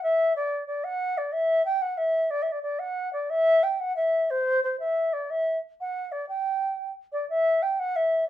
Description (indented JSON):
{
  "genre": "celtic folk",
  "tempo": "121 BPM (dotted quarters)",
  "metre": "6/8",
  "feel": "straight",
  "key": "unclear",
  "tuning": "A4 = 435 Hz",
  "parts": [
    { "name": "baroque flute", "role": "solo", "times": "0.0-8.3 s", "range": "C5 to G5", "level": "-23 LUFS", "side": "equal", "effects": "none" }
  ],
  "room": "moderate studio reverb, RT60 0.6 s",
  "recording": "minimal, uncompressed stereo recording",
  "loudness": "-24 LUFS",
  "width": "side -12 dB against mid",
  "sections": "0.0-7.3 A section; 7.3-8.3 A section",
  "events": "none",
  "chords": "none"
}